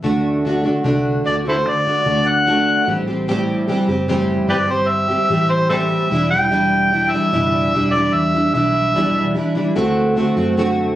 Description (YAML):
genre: pop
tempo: 74 BPM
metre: 4/4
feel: straight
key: unclear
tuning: A4 = 439 Hz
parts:
  - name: fingerpicked plugged-in old ladder-braced acoustic guitar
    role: accompaniment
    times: 0.0-11.0 s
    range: E2 to G4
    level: -18 LUFS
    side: equal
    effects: double-tracked left and right
  - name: vintage muted fingered electric bass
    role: bass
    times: 0.0-10.9 s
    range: E1 to D3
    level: -25 LUFS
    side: equal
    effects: none
  - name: overdriven harmonica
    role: melody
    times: 1.3-9.3 s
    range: E4 to G5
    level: -17 LUFS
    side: equal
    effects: plate reverb
room: wet small room reverb, RT60 0.5 s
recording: recorded on a phone in the room, club reverb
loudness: -15 LUFS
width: side -13 dB against mid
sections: 0.0-11.0 A section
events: none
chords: 0.0 D; 2.9 Am7; 6.1 Em7; 9.8 D7